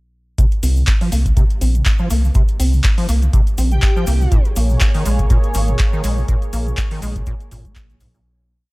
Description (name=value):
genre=acid house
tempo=122 BPM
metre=4/4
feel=swing 55% on 16ths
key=unclear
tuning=A4 = 440 Hz
part: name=acid bass, square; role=riff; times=0.4-8.2 s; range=Ab2 to C4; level=-24 LUFS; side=equal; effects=tube saturation, ensemble chorus, vintage 12-bit sampler grit, sidechain pumping
part: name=booming analog drum machine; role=drums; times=0.4-8.1 s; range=handclaps, hi-hat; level=-26 LUFS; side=equal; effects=none
part: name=electronic kick drum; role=drums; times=0.4-7.9 s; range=none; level=-16 LUFS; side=equal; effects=none
part: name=cabasa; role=percussion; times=0.4-8.2 s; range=none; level=-36 LUFS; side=left 4 dB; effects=none
part: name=round analog bass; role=bass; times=0.6-8.2 s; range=Ab1 to C2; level=-16 LUFS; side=equal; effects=transformer saturation, sidechain pumping
part: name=airy dreamy lead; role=melody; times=3.7-4.4 s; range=G4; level=-28 LUFS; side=equal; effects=chorus, tape echo
part: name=lush unison pad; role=sustained chords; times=4.3-8.2 s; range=Bb3 to Db5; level=-28 LUFS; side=right 1 dB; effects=chorus, phaser, sidechain pumping
room=little or no reverb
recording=dry, gritty hardware recording, transformer saturation, faint mains hum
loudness=-14 LUFS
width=side -23 dB against mid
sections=0.4-8.3 groove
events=filter sweep on acid bass 0.4-8.3; fade-out 5.6-8.3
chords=0.4 C5; 4.3 Bbm7